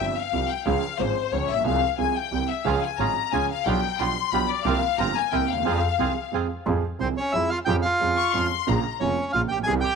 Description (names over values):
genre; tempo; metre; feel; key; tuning
tango; 180 BPM; 3/4; rubato; F harmonic minor; A4 = 440 Hz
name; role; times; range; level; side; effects
clear studio violin section; second line; 0.0-8.9 s; C5 to Db6; -25 LUFS; left 14 dB; none
warm grand piano; accompaniment; 0.0-9.8 s; F1 to Ab4; -28 LUFS; right 10 dB; none
clear double bass; bass; 0.0-9.8 s; F1 to F2; -29 LUFS; equal; none
bandoneon; stabs; 2.7-6.5 s; B3 to Bb4; -30 LUFS; right 11 dB; none
bandoneon; melody; 7.0-10.0 s; C4 to Ab5; -24 LUFS; right 1 dB; none
room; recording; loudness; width
light reverb, small room ambience; 1960s-style stereo with parts hard left and right; -22 LUFS; side -5 dB against mid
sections
0.0-6.7 A section; 6.7-10.0 B section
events
violin section solo 0.0-6.7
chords
0.0 Csus4; 0.7 Db; 1.7 Fm/C; 2.3 C; 2.7 Db; 3.7 G7/B; 4.7 C7sus4; 5.3 C7; 5.7 Fm; 7.7 Db/F; 8.7 Bbm